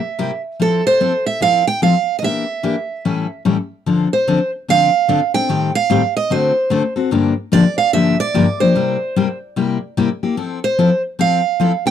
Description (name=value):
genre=jazz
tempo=147 BPM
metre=4/4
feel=swing 62% on 8ths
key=F major, D minor from 3.9 s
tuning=A4 = 439 Hz
part: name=picked steel-string acoustic guitar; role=melody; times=0.0-11.9 s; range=A4 to G5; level=-16 LUFS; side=right 4 dB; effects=none
part: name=picked steel-string acoustic guitar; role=accompaniment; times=0.2-11.9 s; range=G2 to A4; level=-16 LUFS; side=left 4 dB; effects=none
room=light reverb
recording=dry, close 1970s-style studio recording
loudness=-14 LUFS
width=side -9 dB against mid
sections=0.0-3.9 A section; 3.9-11.9 B section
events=none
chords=0.0 C7; 0.6 Fmaj7; 2.2 Em7b5; 3.0 A7; 3.9 Dm7; 5.5 Am7b5; 6.3 D7; 7.1 Gm7; 8.7 C7; 10.4 Fmaj7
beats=0.19 | 0.59 1.00 1.41 1.82 | 2.23 2.63 3.04 3.45 | 3.86 4.26 4.67 5.08 | 5.49 5.89 6.30 6.71 | 7.12 7.52 7.93 8.34 | 8.74 9.15 9.56 9.97 | 10.37 10.78 11.19 11.60